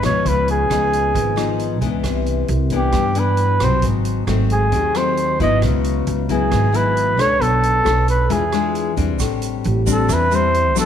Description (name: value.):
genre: bossa nova.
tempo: 134 BPM.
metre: 4/4.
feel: straight.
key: unclear.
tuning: A4 = 440 Hz.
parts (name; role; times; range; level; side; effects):
nylon-string guitar; accompaniment; 0.0-10.9 s; G2 to C#5; -21 LUFS; left 8 dB; none.
upright bass; bass; 0.0-10.9 s; G#1 to G2; -20 LUFS; right 2 dB; none.
swinging big-band drum kit; drums; 0.0-10.9 s; hi-hat, kick drum, rim click; -28 LUFS; right 5 dB; none.
warm flugelhorn; melody; 0.1-10.9 s; G4 to D#5; -19 LUFS; right 1 dB; none.
tube shaker; percussion; 9.2-10.9 s; none; -29 LUFS; right 19 dB; none.
room: light reverb, small room ambience.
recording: 1960s-style stereo with parts hard left and right.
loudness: -15 LUFS.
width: side -9 dB against mid.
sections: 0.0-10.9 A section.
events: none.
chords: 0.2 C#9; 2.0 Cmaj9; 3.8 G#7b9; 5.6 C#m7; 7.4 Bm9; 8.3 E7b9; 9.2 Am11.